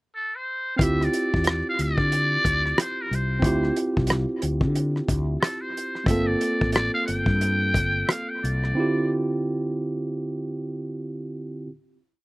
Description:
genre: R&B, neo-soul.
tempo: 90 BPM.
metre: 4/4.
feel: swing 60% on 16ths, uneven beats.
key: D minor.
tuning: A4 = 438 Hz.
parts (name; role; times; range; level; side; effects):
trumpet with metal mute; melody; 0.2-9.1 s; A4 to G5; -26 LUFS; equal; none.
barky tine electric piano; accompaniment; 0.8-11.7 s; D3 to A4; -26 LUFS; right 1 dB; none.
mellow fretless electric bass; bass; 0.8-8.7 s; G1 to D3; -25 LUFS; left 1 dB; none.
warm soul drum kit; drums; 0.8-8.7 s; hi-hat, kick drum, rim click; -24 LUFS; equal; none.
room: little or no reverb.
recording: recorded outdoors, with no room sound.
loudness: -22 LUFS.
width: side -21 dB against mid.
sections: 0.0-0.8 pickup bar; 0.8-11.7 A section.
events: slowing down 6.1-11.7.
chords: 0.0 N.C.; 0.8 Dm9; 6.1 Gm9; 8.8 Dm9.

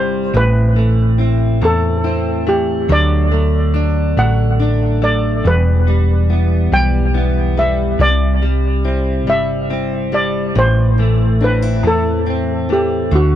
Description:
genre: six-eight pop ballad.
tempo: 47 BPM (dotted quarters).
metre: 6/8.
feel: straight.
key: unclear.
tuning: A4 = 444 Hz.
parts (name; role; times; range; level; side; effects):
steel pan; melody; 0.0-13.4 s; F#4 to G5; -19 LUFS; equal; tape echo.
direct-recorded clean electric guitar; accompaniment; 0.0-13.4 s; E2 to D4; -19 LUFS; equal; double-tracked left and right.
fingerpicked steel-string acoustic guitar; arpeggios; 0.0-13.4 s; E3 to E4; -24 LUFS; left 5 dB; none.
hollow-body short-scale fingered electric bass; bass; 0.0-13.4 s; E1 to E2; -15 LUFS; equal; none.
room: light reverb.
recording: dry, close 1970s-style studio recording.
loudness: -13 LUFS.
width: side -11 dB against mid.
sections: 0.0-13.4 A section.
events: none.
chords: 0.3 Am; 2.9 D; 5.4 Em; 8.0 C; 10.6 Am.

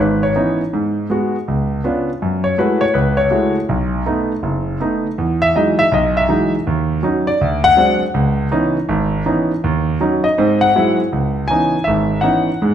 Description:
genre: solo jazz.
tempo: 162 BPM.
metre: 4/4.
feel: swing 63% on 8ths, rubato.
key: C# minor.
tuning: A4 = 439 Hz.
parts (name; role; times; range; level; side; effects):
warm concert grand piano; solo; 0.0-12.7 s; F#1 to G#5; -14 LUFS; equal; none.
room: wet recital hall reverb, RT60 1.4 s.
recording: recorded in a church or concert hall.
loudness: -14 LUFS.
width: side -9 dB against mid.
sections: 0.0-11.1 A section; 11.1-12.7 B section.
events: grand piano solo 0.0-11.1.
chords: 0.0 C#m9; 0.7 G#m7; 1.5 C#7b9; 2.2 F#m9; 3.7 B7; 5.2 Emaj9; 6.7 D#m7; 7.4 D7#11; 8.1 C#m9; 9.6 D#m7; 10.4 G#7b13; 11.1 C#m9.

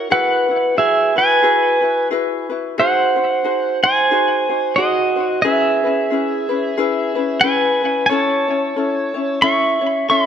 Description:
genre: Hawaiian.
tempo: 90 BPM.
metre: 4/4.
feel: swing 58% on 8ths.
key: unclear.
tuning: A4 = 440 Hz.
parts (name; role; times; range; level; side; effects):
pedal steel guitar; melody; 0.0-10.3 s; F#4 to C#6; -15 LUFS; right 2 dB; digital delay.
ukulele; accompaniment; 0.0-10.3 s; C#4 to C#5; -21 LUFS; left 6 dB; none.
room: moderate echo chamber reverb, RT60 1.9 s.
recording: none.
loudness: -14 LUFS.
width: side -8 dB against mid.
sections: 0.0-10.3 A section.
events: none.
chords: 0.1 Eadd9; 2.8 G#7; 5.4 C#m7; 8.1 A.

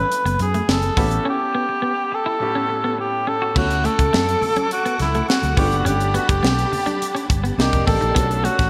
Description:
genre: polished 1980s jazz-funk pop.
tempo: 104 BPM.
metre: 4/4.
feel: straight.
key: unclear.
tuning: A4 = 440 Hz.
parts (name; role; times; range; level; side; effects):
mellow cor anglais; melody; 0.0-8.7 s; E4 to B4; -24 LUFS; equal; none.
clear grand piano; accompaniment; 0.0-8.7 s; A2 to F#5; -31 LUFS; equal; lush chorus.
semi-hollow electric guitar; riff; 0.0-8.6 s; A3 to F#4; -30 LUFS; equal; lush chorus.
sustaining fretless electric bass; bass; 0.0-8.7 s; E#1 to F#2; -25 LUFS; equal; none.
tight funk drum kit; drums; 0.1-8.7 s; crash cymbal, hi-hat, kick drum, snare drum; -24 LUFS; equal; gated reverb.
congas; percussion; 0.4-8.6 s; none; -37 LUFS; equal; none.
soft string machine; sustained chords; 3.6-8.7 s; A3 to D6; -32 LUFS; equal; ensemble chorus.
room: wet lush hall reverb, RT60 2.1 s.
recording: bright 1980s-style digital production.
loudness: -20 LUFS.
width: mono.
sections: 0.0-3.6 A section; 3.6-8.7 B section.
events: break 1.3-3.6.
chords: 0.0 F#m11; 1.0 A7; 3.6 Dmaj7; 5.6 Gmaj9; 7.6 Cm9; 8.2 Bm9.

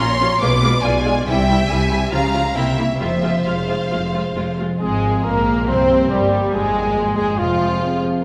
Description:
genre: classical, dramatic, fast romantic movement for symphony orchestra.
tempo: 131-144 BPM.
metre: 4/4.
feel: rubato.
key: F minor.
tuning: A4 = 440 Hz.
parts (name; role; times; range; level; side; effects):
warm symphonic violin section; melody; 0.0-8.0 s; F4 to D6; -26 LUFS; equal; none.
warm symphonic violin section; second line; 0.0-8.0 s; G3 to F5; -26 LUFS; equal; none.
rich symphonic viola section; accompaniment; 0.0-8.0 s; F3 to F4; -27 LUFS; equal; none.
concert harp; arpeggios; 0.0-8.2 s; F2 to Db5; -29 LUFS; equal; none.
rich symphonic cello section; bass; 0.0-8.0 s; F2 to Db3; -27 LUFS; equal; none.
rich symphonic double bass section; bass; 0.0-8.0 s; F1 to Db2; -26 LUFS; equal; none.
mellow French horn section; sustained chords; 4.8-8.2 s; G3 to C4; -28 LUFS; equal; none.
mellow trumpet; stabs; 4.8-8.0 s; F4 to C5; -23 LUFS; equal; none.
room: wet scoring stage reverb, RT60 1.9 s.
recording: recorded in a church or concert hall.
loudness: -18 LUFS.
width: mono.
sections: 0.0-4.8 A section; 4.8-8.2 A section.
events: none.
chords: 0.4 Bdim7; 1.3 C; 2.1 Bbm/Db; 2.6 C7b9; 3.0 Fm; 4.8 Fm/Ab; 5.7 Gmadd11; 6.5 Fm/Ab.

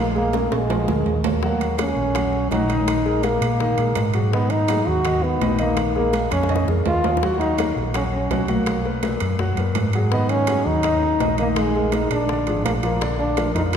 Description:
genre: latin, salsa.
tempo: 166 BPM.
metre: 4/4.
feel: straight.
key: unclear.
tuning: A4 = 444 Hz.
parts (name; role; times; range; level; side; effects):
warm trombone; melody; 0.0-13.8 s; Ab3 to Gb4; -22 LUFS; equal; none.
warm concert grand piano; accompaniment; 0.0-13.8 s; Bb2 to Gb5; -26 LUFS; left 1 dB; none.
hollow-body short-scale fingered electric bass; bass; 0.0-13.8 s; Ab1 to Bb2; -23 LUFS; equal; none.
bongos; percussion; 0.2-13.8 s; none; -31 LUFS; left 5 dB; none.
congas; percussion; 0.2-13.8 s; none; -30 LUFS; left 1 dB; none.
timbales; percussion; 0.3-13.8 s; none; -29 LUFS; right 6 dB; none.
room: wet church reverb, RT60 2.8 s.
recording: recorded in a church or concert hall.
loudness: -18 LUFS.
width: side -8 dB against mid.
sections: 0.0-1.4 A section; 1.4-13.0 A section.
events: drum fill 0.3-1.4, 6.3-7.2.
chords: 0.0 Bb5; 0.7 Bb7; 1.4 Ebm7; 2.9 Bb7sus4; 7.2 Ebm7; 8.7 B5; 10.1 Ab5; 11.6 Bb7sus4; 12.3 Bb7; 13.0 Bb.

